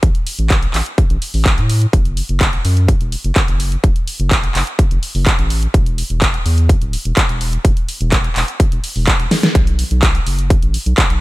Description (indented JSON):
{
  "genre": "progressive house",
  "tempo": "126 BPM",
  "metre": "4/4",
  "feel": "straight",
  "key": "unclear",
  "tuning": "A4 = 436 Hz",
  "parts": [
    { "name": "round analog bass", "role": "bass", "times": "0.0-11.2 s", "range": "D1 to A2", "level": "-17 LUFS", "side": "equal", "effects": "sidechain pumping" },
    { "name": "big-room dance drum kit", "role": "drums", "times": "0.0-11.2 s", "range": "handclaps, hi-hat, snare drum", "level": "-19 LUFS", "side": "equal", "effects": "none" },
    { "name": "electronic kick drum", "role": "drums", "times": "0.0-11.1 s", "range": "none", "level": "-14 LUFS", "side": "equal", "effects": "none" }
  ],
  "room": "little or no reverb",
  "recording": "none",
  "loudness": "-13 LUFS",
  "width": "side -19 dB against mid",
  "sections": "0.0-11.2 A section",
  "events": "drum fill 9.3",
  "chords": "none"
}